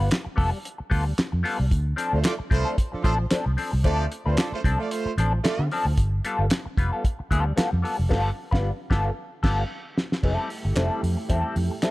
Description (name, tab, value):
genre	funk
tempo	113 BPM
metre	4/4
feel	swing 56% on 16ths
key	unclear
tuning	A4 = 440 Hz
part	clean electric guitar	accompaniment	0.0-11.9 s	F3 to B4	-28 LUFS	left 2 dB	wah
part	vintage muted fingered electric bass	bass	0.0-11.7 s	F1 to D3	-24 LUFS	equal	none
part	cloth-damped thuddy drum kit	drums	0.1-11.9 s	crash cymbal, handclaps, hi-hat, kick drum, snare drum	-25 LUFS	equal	none
part	warm horn section	second line	2.1-5.7 s	F3 to D5	-29 LUFS	right 4 dB	none
part	string machine, full ensemble	sustained chords	10.2-11.9 s	A3 to G4	-34 LUFS	right 3 dB	ensemble chorus
room	studio ambience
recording	dark, warm production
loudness	-22 LUFS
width	side -19 dB against mid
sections	0.0-10.2 A section; 10.2-11.9 B section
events	band accent 8.1-10.2; drum fill 9.2-10.2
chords	0.0 G9; 1.7 Dm7; 6.0 G9; 10.2 Fmaj9